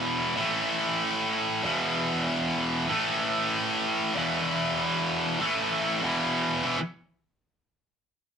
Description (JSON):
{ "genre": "punk", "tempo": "free time", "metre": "none", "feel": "none", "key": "unclear", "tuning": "A4 = 441 Hz", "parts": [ { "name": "tight distorted guitar", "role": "solo", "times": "0.0-6.8 s", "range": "E2 to A3", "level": "-24 LUFS", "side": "equal", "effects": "distortion" } ], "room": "light reverb", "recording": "band playing live in one room", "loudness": "-24 LUFS", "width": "side -7 dB against mid", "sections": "0.0-6.7 A section; 6.7-7.9 B section", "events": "none", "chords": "0.4 A5; 1.6 E5; 2.9 A5; 4.1 E5; 5.4 A5; 6.0 E5" }